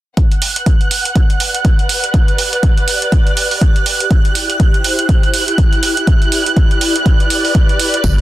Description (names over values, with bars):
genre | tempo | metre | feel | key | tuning
piano house | 122 BPM | 4/4 | swing 59% on 16ths | G major | A4 = 440 Hz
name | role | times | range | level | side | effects
analog string pad | sustained chords | 0.2-8.2 s | F#6 | -19 LUFS | right 4 dB | ensemble chorus, sidechain pumping
electronic hi-hat | drums | 0.2-8.2 s | none | -19 LUFS | right 4 dB | none
electronic kick drum | drums | 0.2-8.2 s | none | -12 LUFS | equal | none
warm symphonic string section | texture | 0.2-8.2 s | E4 to F#5 | -21 LUFS | left 1 dB | sidechain pumping
organ-like FM bass | bass | 8.0-8.2 s | G1 | -14 LUFS | equal | sidechain pumping
tambourine | percussion | 8.0-8.2 s | none | -26 LUFS | right 9 dB | none
room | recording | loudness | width
digital ambience | dense, heavily limited modern master | -11 LUFS | side -15 dB against mid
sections
0.2-8.2 A section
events
fade-in on string section 0.2-8.2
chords
0.2 Gmaj7